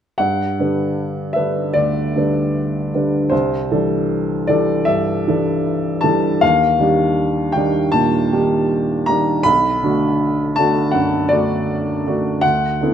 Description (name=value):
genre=classical, impressionist solo piano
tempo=78 BPM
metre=4/4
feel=uneven beats, rubato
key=G major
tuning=A4 = 443 Hz
part: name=warm baby grand piano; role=solo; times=0.2-12.9 s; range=B1 to B5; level=-15 LUFS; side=equal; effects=none
room=wet recital hall reverb, RT60 1.4 s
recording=close, detailed microphones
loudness=-15 LUFS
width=side -9 dB against mid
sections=0.2-12.9 A section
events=none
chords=0.2 Gmaj7; 3.3 C69; 6.4 Ebmaj7; 9.5 Bm7; 12.4 D69